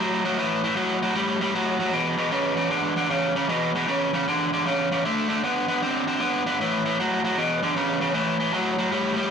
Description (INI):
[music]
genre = blues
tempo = 155 BPM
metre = 4/4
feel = swing 65% on 8ths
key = A mixolydian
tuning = A4 = 440 Hz
[part]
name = biting overdriven guitar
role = solo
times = 0.0-9.3 s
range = E2 to C4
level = -22 LUFS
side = equal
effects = spring reverb
[sound]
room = moderate small room reverb, RT60 0.5 s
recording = rough rehearsal-room recording, warm saturation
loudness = -22 LUFS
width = side -6 dB against mid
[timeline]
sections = 0.0-8.1 A section; 8.1-9.3 B section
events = none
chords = 0.0 A5; 1.9 E5; 5.0 D5; 6.6 A5; 7.4 E5; 8.1 A5